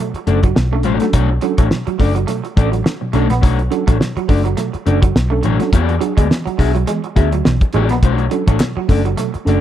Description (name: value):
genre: funk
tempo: 104 BPM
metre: 4/4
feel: swing 56% on 16ths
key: B dorian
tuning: A4 = 441 Hz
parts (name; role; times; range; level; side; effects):
- electric guitar at the edge of break-up; accompaniment; 0.0-9.6 s; A3 to E5; -21 LUFS; left 9 dB; none
- electric guitar at the edge of break-up; riff; 0.0-9.4 s; F#3 to B3; -23 LUFS; right 9 dB; spring reverb
- mellow tine electric piano; stabs; 0.0-9.6 s; B2 to A4; -23 LUFS; right 4 dB; medium stereo tremolo
- vintage muted picked electric bass; bass; 0.1-9.6 s; F#1 to E2; -16 LUFS; equal; none
- cloth-damped thuddy drum kit; drums; 0.1-9.6 s; hi-hat, kick drum, snare drum; -16 LUFS; equal; none
- group handclap; percussion; 8.6-8.8 s; none; -30 LUFS; left 5 dB; none
room: little or no reverb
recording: dry, close 1970s-style studio recording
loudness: -13 LUFS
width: side -11 dB against mid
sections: 0.0-9.6 A section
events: none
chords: 0.0 Bm9; 5.7 E9; 8.0 Bm9